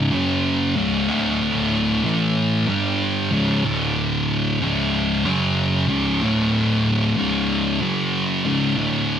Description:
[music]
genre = metal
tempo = 94 BPM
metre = 4/4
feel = straight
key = C# phrygian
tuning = A4 = 440 Hz
[part]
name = thick fuzz guitar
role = solo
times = 0.0-9.2 s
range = C#2 to A3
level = -18 LUFS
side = equal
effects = distortion
[sound]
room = moderate small room ambience, RT60 0.5 s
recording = band playing live in one room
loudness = -18 LUFS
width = side -8 dB against mid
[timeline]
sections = 0.0-9.2 A section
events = none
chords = 0.1 F#5; 0.8 C#5; 1.1 D5; 2.0 A5; 2.7 G5; 3.3 C#5; 3.6 D5; 4.6 C#5; 5.2 F#5; 5.9 C#5; 6.2 D5; 7.2 C#5; 7.8 F#5; 8.4 C#5

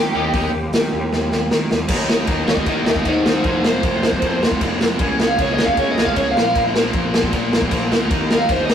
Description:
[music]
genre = punk rock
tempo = 154 BPM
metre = 4/4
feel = straight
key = unclear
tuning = A4 = 439 Hz
[part]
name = biting lead guitar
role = melody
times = 0.0-8.7 s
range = Eb4 to G5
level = -21 LUFS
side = right 1 dB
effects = overdrive
[part]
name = fuzz picked electric bass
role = bass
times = 0.0-8.7 s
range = F1 to Eb3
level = -25 LUFS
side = equal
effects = overdrive
[part]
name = distorted electric guitar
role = riff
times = 0.1-8.7 s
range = F2 to Eb4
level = -23 LUFS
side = left 1 dB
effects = distortion
[part]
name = raw garage drum kit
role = drums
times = 0.3-8.7 s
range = crash cymbal, hi-hat, kick drum, snare drum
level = -18 LUFS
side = equal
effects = none
[sound]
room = moderate small room reverb, RT60 0.6 s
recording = rough rehearsal-room recording, warm saturation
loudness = -16 LUFS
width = side -8 dB against mid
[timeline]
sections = 0.0-1.9 A section; 1.9-8.7 B section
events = half time 0.0-1.9; drum fill 1.1-1.9; lead electric guitar solo 1.9-8.7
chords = 0.0 Eb; 3.5 F5; 5.0 Db5; 6.4 Bb5; 8.1 Eb5

